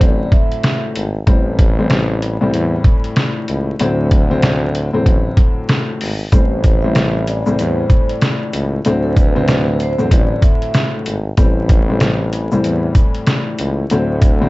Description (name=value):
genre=hip hop, boom-bap hip-hop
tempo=95 BPM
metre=4/4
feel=swing 60% on 16ths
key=A dorian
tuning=A4 = 440 Hz
part: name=vibraphone with soft mallets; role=melody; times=0.0-0.8, 6.3-10.9 s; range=A4 to E5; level=-23 LUFS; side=right 2 dB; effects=slapback echo
part: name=dark upright piano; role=accompaniment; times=0.0-14.5 s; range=A2 to C4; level=-19 LUFS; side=left 2 dB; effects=cassette tape
part: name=clear tuba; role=bass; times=0.0-14.5 s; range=G#1 to E2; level=-19 LUFS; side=equal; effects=none
part: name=trip hop sampler-style drum kit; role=drums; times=0.0-14.4 s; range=hi-hat, kick drum, snare drum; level=-14 LUFS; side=equal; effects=none
part: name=tube shaker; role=percussion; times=6.3-14.4 s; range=none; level=-42 LUFS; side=right 5 dB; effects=none
room=light reverb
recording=dark, warm production, vinyl crackle, nothing above 7.9 kHz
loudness=-13 LUFS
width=side -20 dB against mid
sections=0.0-14.5 A section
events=none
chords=0.0 D7; 1.3 Am7; 3.8 D7; 6.3 Am7; 8.9 D7; 11.4 Am7; 13.9 D7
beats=0.01 0.64 | 1.27 1.90 2.54 3.17 | 3.80 4.43 5.06 5.69 | 6.33 6.96 7.59 8.22 | 8.85 9.48 10.12 10.75 | 11.38 12.01 12.64 13.27 | 13.90